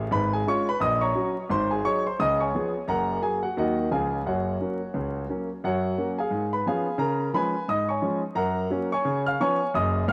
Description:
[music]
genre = jazz, stride piano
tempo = 175 BPM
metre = 4/4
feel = swing 59% on 8ths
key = F# major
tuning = A4 = 440 Hz
[part]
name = clear concert grand piano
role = solo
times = 0.0-10.1 s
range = C#1 to E#6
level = -26 LUFS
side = equal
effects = cassette tape
[sound]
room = moderate lush hall reverb, RT60 2.6 s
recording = home recording on cassette, vinyl crackle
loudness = -26 LUFS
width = mono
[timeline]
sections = 0.0-5.6 A section; 5.6-10.1 B section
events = none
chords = 0.1 C#7/G#; 0.8 F#/A#; 1.5 G#7; 2.2 C#7; 2.9 F#; 3.6 D#m; 3.9 C#; 4.2 F#; 6.3 C#7/G#; 7.0 C#7; 8.4 F#; 9.1 C#7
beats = | 0.13 0.47 0.81 1.16 | 1.50 1.84 2.19 2.53 | 2.88 3.22 3.56 3.91 | 4.25 4.59 4.94 5.28 | 5.62 5.97 6.31 6.65 | 7.00 7.34 7.68 8.03 | 8.37 8.71 9.05 9.40 | 9.74 10.08

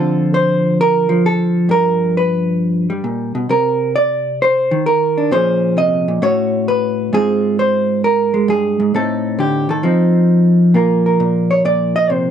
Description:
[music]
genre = solo jazz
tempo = 132 BPM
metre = 4/4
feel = swing 68% on 8ths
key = G minor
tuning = A4 = 440 Hz
[part]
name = vintage hollow-body jazz guitar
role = solo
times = 0.0-12.3 s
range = G2 to Eb5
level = -13 LUFS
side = equal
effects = none
[sound]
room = light reverb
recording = dark, warm production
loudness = -13 LUFS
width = side -8 dB against mid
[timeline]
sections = 0.0-10.7 A section; 10.7-12.3 B section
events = hollow-body jazz guitar solo 10.7-12.3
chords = 0.0 Dm7; 1.7 G7#9; 3.5 Cm9; 5.3 Bbm9; 6.2 A69; 7.1 Ab6; 8.9 Adim; 9.8 F7; 10.7 Bbsus2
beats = 0.33 0.78 1.23 | 1.69 2.14 2.59 3.04 | 3.50 3.95 4.40 4.86 | 5.31 5.76 6.21 6.67 | 7.12 7.57 8.03 8.48 | 8.93 9.38 9.84 10.29 | 10.74 11.20 11.65 12.11

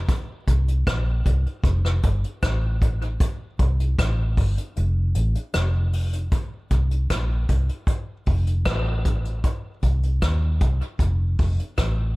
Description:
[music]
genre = dub reggae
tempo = 77 BPM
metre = 4/4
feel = straight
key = unclear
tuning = A4 = 440 Hz
[part]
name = vintage muted fingered electric bass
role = bass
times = 0.0-12.2 s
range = F1 to Eb2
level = -21 LUFS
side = equal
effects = none
[part]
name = vintage brush drum kit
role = drums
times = 0.1-12.0 s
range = hi-hat, kick drum, rim click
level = -24 LUFS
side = equal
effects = none
[sound]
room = little or no reverb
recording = echo-heavy mix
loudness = -20 LUFS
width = side -22 dB against mid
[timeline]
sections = 0.0-6.3 A section; 6.3-12.2 B section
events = kick muted 4.8-6.3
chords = none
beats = | 0.08 0.86 1.64 2.42 | 3.20 3.98 4.76 5.54 | 6.32 7.10 7.88 8.66 | 9.44 10.22 11.00 11.78

